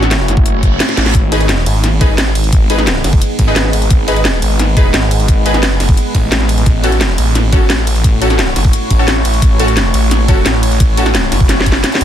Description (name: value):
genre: dark technical drum and bass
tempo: 174 BPM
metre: 4/4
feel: straight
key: unclear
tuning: A4 = 441 Hz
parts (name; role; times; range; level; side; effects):
- deep dark ambient pad; sustained chords; 0.0-12.0 s; G#3 to C#5; -20 LUFS; equal; chorus, built-in reverb, sidechain pumping
- orchestra-hit-like synth stab; stabs; 0.0-11.1 s; C#4 to B4; -19 LUFS; left 1 dB; built-in reverb, tape echo
- snarling distorted saw bass; bass; 0.0-12.0 s; F#1 to A1; -14 LUFS; equal; distortion, tube saturation, sidechain pumping
- drum and bass drum kit; drums; 0.0-12.0 s; hi-hat, ride cymbal, snare drum; -16 LUFS; equal; none
- electronic kick drum; drums; 0.4-11.7 s; none; -11 LUFS; equal; none
- reverse cymbal and zap; sound effects; 0.6-1.1, 11.9-12.0 s; none; -23 LUFS; right 4 dB; none
room: digital ambience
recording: dense, heavily limited modern master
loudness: -9 LUFS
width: side -10 dB against mid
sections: 0.0-12.0 A section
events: reverse cymbal 0.6-1.1; drum fill 0.9, 11.5-12.0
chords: 0.0 A6; 1.1 G#m; 6.7 A6